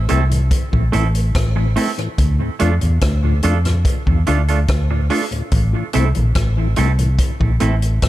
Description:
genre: dub reggae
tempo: 72 BPM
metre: 4/4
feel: straight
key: A phrygian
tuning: A4 = 436 Hz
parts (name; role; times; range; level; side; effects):
- vintage muted fingered electric bass; bass; 0.0-8.1 s; A1 to F2; -16 LUFS; equal; none
- electric guitar through a small old amp; accompaniment; 0.1-7.7 s; A3 to A4; -24 LUFS; right 7 dB; dub echo
- mellow tonewheel organ; accompaniment; 0.1-7.7 s; D2 to F4; -24 LUFS; left 2 dB; chorus vibrato, dub echo
- vintage drum kit; drums; 0.1-8.1 s; hi-hat, kick drum, rim click; -20 LUFS; equal; none
room: small room ambience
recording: echo-heavy mix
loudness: -14 LUFS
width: side -15 dB against mid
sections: 0.0-8.1 A section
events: none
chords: 0.0 Am; 2.2 Dm; 5.5 Am

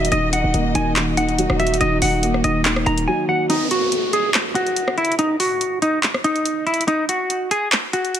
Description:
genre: hip hop, trap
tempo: 142 BPM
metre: 4/4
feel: half-time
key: Eb phrygian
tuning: A4 = 440 Hz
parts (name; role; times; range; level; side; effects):
- semi-hollow electric guitar; melody; 0.0-8.2 s; Eb4 to Bb5; -20 LUFS; equal; none
- dark concert grand piano; accompaniment; 0.0-3.5 s; Eb3 to Bb3; -22 LUFS; equal; none
- muted symphonic string section; sustained chords; 0.0-3.5 s; Bb3 to Eb5; -28 LUFS; left 1 dB; none
- hard-hitting 808-style bass; bass; 0.0-3.1 s; Eb1; -23 LUFS; equal; none
- trap drum kit; drums; 0.0-8.2 s; handclaps, hi-hat, rim click; -22 LUFS; equal; overdrive, vintage 12-bit sampler grit
- downlifter; sound effects; 3.5-6.9 s; none; -27 LUFS; right 1 dB; none
room: light reverb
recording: none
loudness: -17 LUFS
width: side -10 dB against mid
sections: 0.0-3.5 A section; 3.5-8.2 B section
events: silent gap 3.1-3.5; kick muted 3.5-8.2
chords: 0.0 Ebm; 3.5 N.C.

